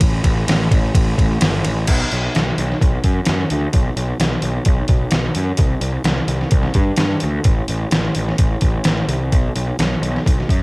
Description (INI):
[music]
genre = rock, shoegaze and dream pop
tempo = 129 BPM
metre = 4/4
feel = straight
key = unclear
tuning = A4 = 440 Hz
[part]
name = fuzz picked electric bass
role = bass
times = 0.0-10.6 s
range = G1 to G2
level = -19 LUFS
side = equal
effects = overdrive
[part]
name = detuned 8-bit digital drum machine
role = drums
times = 0.0-10.6 s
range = crash cymbal, hi-hat, kick drum, ride cymbal, snare drum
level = -17 LUFS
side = equal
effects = cassette tape
[sound]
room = little or no reverb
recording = home recording on cassette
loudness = -15 LUFS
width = side -27 dB against mid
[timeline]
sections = 0.0-1.9 A section; 1.9-10.6 B section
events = none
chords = none